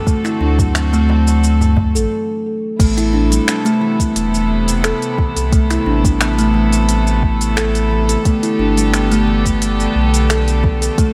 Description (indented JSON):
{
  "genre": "organic downtempo",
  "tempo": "88 BPM",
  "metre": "4/4",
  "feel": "straight",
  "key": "A dorian",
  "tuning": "A4 = 438 Hz",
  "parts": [
    { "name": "bright chamber string section", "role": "sustained chords", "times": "0.0-11.1 s", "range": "C3 to A4", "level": "-23 LUFS", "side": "equal", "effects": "sidechain pumping" },
    { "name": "kalimba", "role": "arpeggios", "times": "0.1-11.1 s", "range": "E3 to A4", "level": "-20 LUFS", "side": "equal", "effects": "digital delay" },
    { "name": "electronic kick drum", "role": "drums", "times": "0.1-11.1 s", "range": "none", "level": "-18 LUFS", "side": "equal", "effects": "small room ambience" },
    { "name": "organic electronic drum kit", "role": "drums", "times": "0.1-11.1 s", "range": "cabasa, crash cymbal, finger snaps, hi-hat", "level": "-24 LUFS", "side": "equal", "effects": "small room ambience" },
    { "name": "darbuka", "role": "percussion", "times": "0.2-1.9 s", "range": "none", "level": "-27 LUFS", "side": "equal", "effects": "none" },
    { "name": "warm sub bass", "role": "bass", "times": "0.4-10.9 s", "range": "E1 to D2", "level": "-19 LUFS", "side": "equal", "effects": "sidechain pumping" }
  ],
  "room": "light reverb, small room ambience",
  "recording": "none",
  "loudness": "-15 LUFS",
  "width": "mono",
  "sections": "0.0-2.8 A section; 2.8-11.1 B section",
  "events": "filter sweep on kalimba 0.0-2.8; stop 2.1-2.8",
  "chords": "0.1 D7; 2.8 Amadd9; 8.3 Gadd9"
}